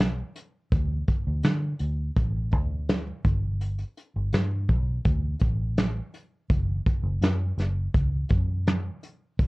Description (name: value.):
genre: indie pop, bedroom pop.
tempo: 83 BPM.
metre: 4/4.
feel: straight.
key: unclear.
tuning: A4 = 442 Hz.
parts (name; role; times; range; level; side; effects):
vintage muted fingered electric bass; bass; 0.0-9.5 s; F#1 to D3; -27 LUFS; equal; none.
soft brush drum kit; drums; 0.0-9.5 s; hi-hat, kick drum, snare drum; -25 LUFS; equal; vintage 12-bit sampler grit.
room: light reverb.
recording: worn, warbling old tape, cassette tape, warbly pitch drift.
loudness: -24 LUFS.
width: side -23 dB against mid.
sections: 0.0-9.5 A section.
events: none.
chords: none.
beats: 0.00 | 0.72 1.44 2.17 2.89 | 3.61 4.33 5.06 5.78 | 6.50 7.22 7.95 8.67 | 9.39.